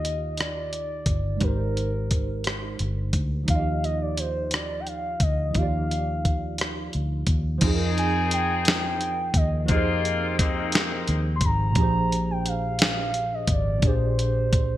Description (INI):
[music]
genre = slow six-eight R&B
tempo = 58 BPM (dotted quarters)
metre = 6/8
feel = straight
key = F dorian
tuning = A4 = 438 Hz
[part]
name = gliding portamento lead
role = melody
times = 0.0-14.8 s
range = Bb4 to C6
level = -29 LUFS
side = equal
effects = chorus, digital delay
[part]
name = mellow tine electric piano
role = accompaniment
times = 0.0-14.8 s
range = Bb2 to F5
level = -31 LUFS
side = right 4 dB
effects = ensemble chorus
[part]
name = vintage muted fingered electric bass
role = bass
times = 0.0-14.8 s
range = G1 to F2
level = -27 LUFS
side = equal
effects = none
[part]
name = dusty soul sampler-style drum kit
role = drums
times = 0.0-14.7 s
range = crash cymbal, hi-hat, kick drum, rim click, snare drum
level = -24 LUFS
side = equal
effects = gated reverb
[part]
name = mellow horn section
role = stabs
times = 7.6-11.4 s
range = Bb3 to Ab4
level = -29 LUFS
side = left 5 dB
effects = digital delay
[sound]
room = light reverb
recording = bright 1980s-style digital production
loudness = -22 LUFS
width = side -14 dB against mid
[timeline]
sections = 0.0-7.6 A section; 7.6-14.8 B section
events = none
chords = 0.0 Ebmaj9; 1.4 Abmaj9; 3.5 Ebmaj9; 7.6 Fm11; 11.8 Bb13